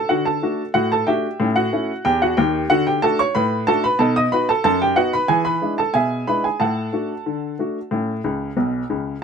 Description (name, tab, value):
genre	ragtime piano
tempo	92 BPM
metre	2/4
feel	straight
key	D major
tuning	A4 = 441 Hz
part	clear upright piano	solo	0.0-9.1 s	B1 to D#6	-17 LUFS	equal	none
room	little or no reverb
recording	close, detailed microphones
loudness	-17 LUFS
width	side -6 dB against mid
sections	0.0-9.2 A section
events	upright piano fill 8.3-9.2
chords	0.0 D; 1.4 A7; 2.7 D; 4.0 B7; 5.3 E7; 6.6 D/A; 7.9 A